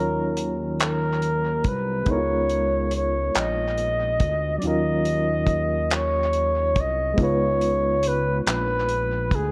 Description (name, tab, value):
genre	slow six-eight R&B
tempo	47 BPM (dotted quarters)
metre	6/8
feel	straight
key	unclear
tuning	A4 = 440 Hz
part	breathy flugelhorn	melody	0.0-9.5 s	Ab4 to Eb5	-26 LUFS	equal	tape echo
part	overdriven reed electric piano	accompaniment	0.0-9.5 s	Gb3 to Db5	-31 LUFS	equal	tremolo
part	fat analog bass	bass	0.0-9.5 s	Bb1 to Eb2	-29 LUFS	equal	none
part	damped 70s drum kit	drums	0.4-9.5 s	handclaps, hi-hat, kick drum	-28 LUFS	equal	tape echo
room	moderate spring reverb, RT60 2.8 s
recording	echo-heavy mix, cassette tape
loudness	-23 LUFS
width	mono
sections	0.0-7.2 A section; 7.2-9.5 A section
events	none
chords	0.0 Ebm7; 2.1 Db13; 4.6 Ebm7; 7.2 Db13